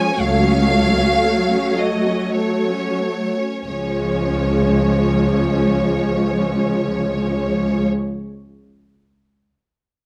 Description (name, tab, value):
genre	classical, slow romantic movement for string orchestra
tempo	44-62 BPM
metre	3/4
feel	rubato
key	Db major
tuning	A4 = 440 Hz
part	rich symphonic violin section	melody	0.0-7.9 s	Db5 to Ab5	-26 LUFS	equal	none
part	rich studio violin section	second line	0.0-7.9 s	A3 to Db5	-29 LUFS	equal	none
part	warm studio viola section	accompaniment	0.0-7.9 s	F3 to A3	-22 LUFS	equal	none
part	rich symphonic cello section	bass	0.2-7.9 s	Db2	-23 LUFS	equal	none
room	moderate large studio reverb, RT60 0.9 s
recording	close, detailed microphones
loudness	-18 LUFS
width	mono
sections	0.0-3.7 A section; 3.7-7.4 B section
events	slowing down 0.0-3.7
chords	0.2 Gbm/Db; 3.7 Db